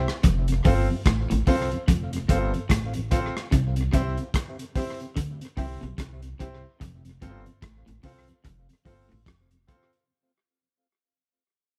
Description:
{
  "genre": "roots reggae",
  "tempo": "73 BPM",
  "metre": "4/4",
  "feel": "swing 59% on 16ths",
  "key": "unclear",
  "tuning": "A4 = 440 Hz",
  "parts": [
    { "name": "clear concert grand piano", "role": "stabs", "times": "0.0-9.9 s", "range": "C4 to C5", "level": "-33 LUFS", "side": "equal", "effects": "none" },
    { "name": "upright bass", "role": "bass", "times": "0.0-9.6 s", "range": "F1 to D2", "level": "-30 LUFS", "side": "equal", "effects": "none" },
    { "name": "crunchy breakbeat drum kit", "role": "drums", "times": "0.1-10.1 s", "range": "hi-hat, kick drum, rim click", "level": "-27 LUFS", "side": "equal", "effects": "none" },
    { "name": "electric guitar through a small old amp", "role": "riff", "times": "0.2-9.5 s", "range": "F2 to D3", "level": "-33 LUFS", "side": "equal", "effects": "none" },
    { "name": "mellow tonewheel organ", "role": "accompaniment", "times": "0.5-9.8 s", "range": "F2 to F4", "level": "-36 LUFS", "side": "equal", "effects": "slow rotary speaker, tape echo" }
  ],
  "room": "little or no reverb",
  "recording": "none",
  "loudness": "-25 LUFS",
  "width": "mono",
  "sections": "0.0-10.1 A section",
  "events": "fade-out 0.0-10.1",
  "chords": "0.2 F; 3.5 C; 6.8 F"
}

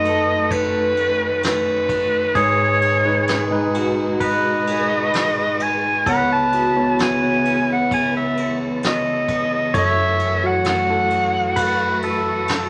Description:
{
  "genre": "acoustic folk-pop ballad",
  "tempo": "65 BPM",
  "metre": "4/4",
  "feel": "straight",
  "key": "C# minor",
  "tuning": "A4 = 439 Hz",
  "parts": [
    { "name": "bright clarinet", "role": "melody", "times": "0.0-12.0 s", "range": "B4 to A5", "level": "-22 LUFS", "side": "equal", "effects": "none" },
    { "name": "pedal steel guitar", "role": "second line", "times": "0.0-12.7 s", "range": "G#4 to C#5", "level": "-27 LUFS", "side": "equal", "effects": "none" },
    { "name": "tine electric piano", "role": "accompaniment", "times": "0.0-12.7 s", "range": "F#1 to C#5", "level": "-25 LUFS", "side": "equal", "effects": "none" },
    { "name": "warm studio string section", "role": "sustained chords", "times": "0.0-12.7 s", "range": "B2 to G#4", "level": "-33 LUFS", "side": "equal", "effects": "none" },
    { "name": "electric guitar through a small old amp", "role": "arpeggios", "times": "0.0-12.7 s", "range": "F#4 to B4", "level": "-29 LUFS", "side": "equal", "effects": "tremolo" },
    { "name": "upright bass", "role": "bass", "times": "0.0-12.7 s", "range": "C#2 to G#2", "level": "-34 LUFS", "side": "equal", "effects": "none" },
    { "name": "vintage brush drum kit", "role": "drums", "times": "0.1-12.7 s", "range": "kick drum, ride cymbal, snare drum", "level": "-30 LUFS", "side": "equal", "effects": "none" }
  ],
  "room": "moderate studio reverb, RT60 0.5 s",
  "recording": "none",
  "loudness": "-19 LUFS",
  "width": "mono",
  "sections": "0.0-12.7 A section",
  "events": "none",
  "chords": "0.0 B7/F#; 2.4 G#m; 6.1 C#m7; 9.7 F#m7"
}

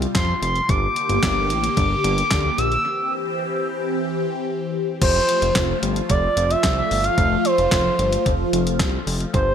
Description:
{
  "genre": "synth-pop",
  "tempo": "111 BPM",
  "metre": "4/4",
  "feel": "straight",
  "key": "F major",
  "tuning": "A4 = 440 Hz",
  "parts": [
    { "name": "phased analog pad", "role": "sustained chords", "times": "0.0-9.5 s", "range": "C3 to G4", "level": "-25 LUFS", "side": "left 1 dB", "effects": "phaser, chorus" },
    { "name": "fat analog bass", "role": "bass", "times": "0.0-9.5 s", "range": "F1 to F2", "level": "-24 LUFS", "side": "equal", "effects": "none" },
    { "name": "clean 12-bit digital drum machine", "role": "drums", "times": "0.0-9.5 s", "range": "crash cymbal, handclaps, hi-hat, kick drum, snare drum", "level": "-23 LUFS", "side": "equal", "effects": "analog delay" },
    { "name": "expressive portamento lead", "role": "melody", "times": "0.2-9.5 s", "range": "C5 to E6", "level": "-21 LUFS", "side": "right 1 dB", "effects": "chorus, analog delay" }
  ],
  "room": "moderate spring reverb, RT60 2.5 s",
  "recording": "echo-heavy mix",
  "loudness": "-18 LUFS",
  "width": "side -8 dB against mid",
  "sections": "0.0-5.0 A section; 5.0-9.5 B section",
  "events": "break 2.9-5.0",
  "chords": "0.0 Csus4; 0.7 Gm; 2.9 C; 5.0 F"
}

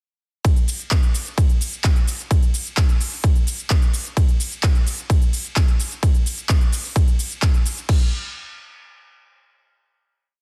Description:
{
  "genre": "EDM",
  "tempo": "129 BPM",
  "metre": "4/4",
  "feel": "straight",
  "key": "none",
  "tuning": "none",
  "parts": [
    { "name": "big-room dance drum kit", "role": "drums", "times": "0.4-8.0 s", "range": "crash cymbal, handclaps, hi-hat, ride cymbal, shaker", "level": "-29 LUFS", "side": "equal", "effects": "none" },
    { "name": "electronic kick drum", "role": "drums", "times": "0.4-8.0 s", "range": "none", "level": "-19 LUFS", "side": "equal", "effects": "none" }
  ],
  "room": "little or no reverb",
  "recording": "dense, heavily limited modern master",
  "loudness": "-20 LUFS",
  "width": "mono",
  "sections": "0.4-7.9 drop; 7.9-9.7 final hit",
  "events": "drop 0.4-7.9",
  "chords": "none"
}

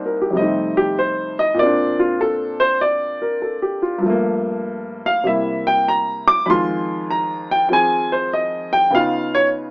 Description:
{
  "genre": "solo jazz",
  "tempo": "98 BPM",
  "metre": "4/4",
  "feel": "swing 66% on 8ths",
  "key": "unclear",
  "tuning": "A4 = 440 Hz",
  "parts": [
    { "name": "warm grand piano", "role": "solo", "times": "0.0-9.7 s", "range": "C2 to D6", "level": "-16 LUFS", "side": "equal", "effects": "none" }
  ],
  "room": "light reverb",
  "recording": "AM radio sound",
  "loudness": "-16 LUFS",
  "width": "side -25 dB against mid",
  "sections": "0.0-9.7 A section",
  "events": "grand piano solo 0.0-9.7",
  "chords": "0.4 F9; 1.6 Bbadd9; 4.0 Gm9; 5.2 C7; 6.5 Fm7; 8.9 Db9"
}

